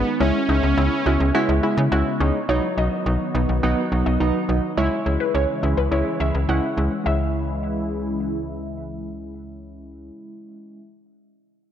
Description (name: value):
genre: synth-pop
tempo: 105 BPM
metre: 4/4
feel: straight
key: C# minor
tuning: A4 = 439 Hz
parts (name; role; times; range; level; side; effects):
- analog synth brass; melody; 0.0-1.9 s; B3 to C#4; -24 LUFS; right 2 dB; chorus, analog delay
- warm analog keys; accompaniment; 0.0-10.8 s; F#3 to E4; -25 LUFS; right 1 dB; chorus, tremolo, low-pass filter
- phased analog pad; sustained chords; 0.0-10.1 s; C#3 to F#4; -28 LUFS; left 1 dB; phaser, chorus, low-pass filter
- wide unison pluck; arpeggios; 0.0-2.4 s; C#4 to F#4; -29 LUFS; left 1 dB; analog delay
- slap-like FM bass; bass; 0.0-10.1 s; B1 to C#3; -23 LUFS; equal; none
- warbly dusty pluck; second line; 2.5-8.7 s; B4 to F#5; -28 LUFS; left 1 dB; chorus, phaser, analog delay
room: moderate plate reverb, RT60 2.8 s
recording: dark, warm production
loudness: -19 LUFS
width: side -9 dB against mid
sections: 0.0-2.5 A section; 2.5-7.1 B section; 7.1-9.3 C section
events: none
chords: 0.2 C#m7; 2.5 B; 4.8 C#m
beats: | 0.20 0.77 1.35 1.92 | 2.49 3.06 3.63 4.20 | 4.77 5.35 5.92 6.49 | 7.06 7.63 8.20 8.77